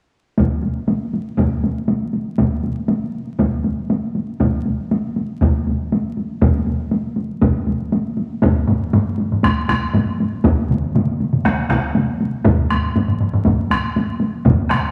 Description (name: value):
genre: japanese traditional, taiko drum ensemble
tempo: 119 BPM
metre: 4/4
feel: straight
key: none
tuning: none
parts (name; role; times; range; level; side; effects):
- solo taiko drums; percussion; 0.4-14.9 s; none; -22 LUFS; equal; none
- taiko ensemble; percussion; 0.4-14.6 s; none; -23 LUFS; equal; none
- solo taiko drums; percussion; 8.7-14.8 s; none; -22 LUFS; equal; none
- taiko ensemble; percussion; 10.7-14.8 s; none; -23 LUFS; equal; none
room: wet large studio reverb, RT60 1.5 s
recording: vinyl crackle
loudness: -19 LUFS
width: mono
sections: 0.4-8.4 A section; 8.4-14.9 B section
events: none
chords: none